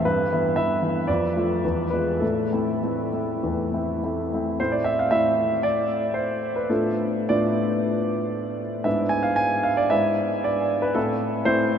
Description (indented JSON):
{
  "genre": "classical, romantic character piece for solo piano",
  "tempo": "98-121 BPM",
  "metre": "4/4",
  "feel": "rubato",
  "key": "A minor",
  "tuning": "A4 = 440 Hz",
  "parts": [
    { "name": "warm grand piano", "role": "solo", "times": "0.0-11.8 s", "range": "E2 to G#5", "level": "-21 LUFS", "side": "equal", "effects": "none" }
  ],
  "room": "wet huge ambient reverb, RT60 8.0 s",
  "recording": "in a vast, echoing space",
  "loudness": "-21 LUFS",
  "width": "side -8 dB against mid",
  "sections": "0.0-4.6 A section; 4.6-11.8 A section",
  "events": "none",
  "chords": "0.0 Em/G; 1.1 Dm/F; 1.6 E7b9; 2.2 Am; 6.7 Bm7b5/A; 8.9 E7/G#; 11.0 Am"
}